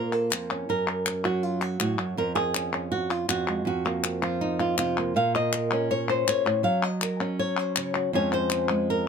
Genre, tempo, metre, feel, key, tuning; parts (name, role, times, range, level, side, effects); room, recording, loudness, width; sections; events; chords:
flamenco; 161 BPM; 4/4; straight; A4 = 439 Hz
flamenco guitar; melody; 0.0-9.1 s; F2 to F5; -24 LUFS; right 1 dB
palmas hand claps; percussion; 0.1-8.9 s; -29 LUFS; left 5 dB
light reverb; close, detailed microphones; -24 LUFS; side -6 dB against mid
0.0-9.1 A section
0.0 Bbm; 0.7 Gb; 2.2 Db/F; 3.7 Fsus4; 5.2 Bbm; 6.6 Gb; 8.1 Db/F